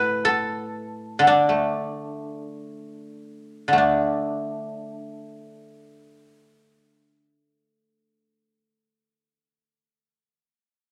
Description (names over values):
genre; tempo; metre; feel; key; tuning
chinese traditional, Chinese solo plucked strings; 40-62 BPM; 2/4; rubato; D gong mode; A4 = 440 Hz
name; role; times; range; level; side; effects
guzheng; solo; 0.0-10.3 s; A2 to B4; -24 LUFS; equal; none
room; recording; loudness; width
moderate large studio reverb, RT60 1.1 s; none; -22 LUFS; mono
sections
0.0-3.8 A section; 3.8-9.6 B section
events
slowing down 0.0-3.8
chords
none